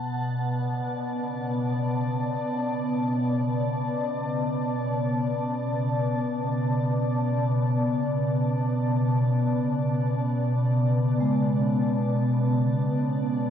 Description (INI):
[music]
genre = ambient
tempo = free time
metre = none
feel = none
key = B dorian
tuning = A4 = 440 Hz
[part]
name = glassy FM pad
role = sustained chords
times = 0.0-13.5 s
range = B2 to A5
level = -23 LUFS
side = equal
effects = ensemble chorus, built-in reverb
[part]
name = vibraphone with medium mallets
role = arpeggios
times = 11.2-13.5 s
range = G#3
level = -29 LUFS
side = right 1 dB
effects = ping-pong delay
[sound]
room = wet huge ambient reverb, RT60 7.8 s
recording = worn, warbling old tape, cassette tape, warbly pitch drift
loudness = -23 LUFS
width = side -9 dB against mid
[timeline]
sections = 0.0-13.5 A section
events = none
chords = 0.0 Bm7